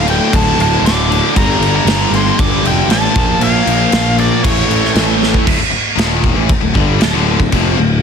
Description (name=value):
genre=hard rock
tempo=117 BPM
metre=4/4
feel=straight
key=D minor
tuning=A4 = 440 Hz
part: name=nasal lead guitar with a parked wah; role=melody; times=0.0-4.9 s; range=C#5 to D6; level=-19 LUFS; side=equal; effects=overdrive, analog delay
part: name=distorted electric guitar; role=riff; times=0.0-8.0 s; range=D2 to Bb3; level=-21 LUFS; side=right 1 dB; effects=overdrive
part: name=high-gain distorted guitar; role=riff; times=0.0-5.5 s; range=D2 to Bb3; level=-20 LUFS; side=right 12 dB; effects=distortion
part: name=tight distorted guitar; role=riff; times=0.0-8.0 s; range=D2 to Bb3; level=-19 LUFS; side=left 14 dB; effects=distortion
part: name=fuzz picked electric bass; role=bass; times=0.0-8.0 s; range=D1 to Bb1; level=-16 LUFS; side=equal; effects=overdrive
part: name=big rock drum kit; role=drums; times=0.1-7.6 s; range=crash cymbal, kick drum, snare drum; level=-15 LUFS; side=equal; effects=none
room=light reverb, studio reverb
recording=dense, heavily limited modern master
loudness=-10 LUFS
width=side -6 dB against mid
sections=0.0-5.5 A section; 5.5-8.0 B section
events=drum fill 5.2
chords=0.0 D5; 1.4 G5; 3.2 Bb5; 4.4 A; 5.5 Dm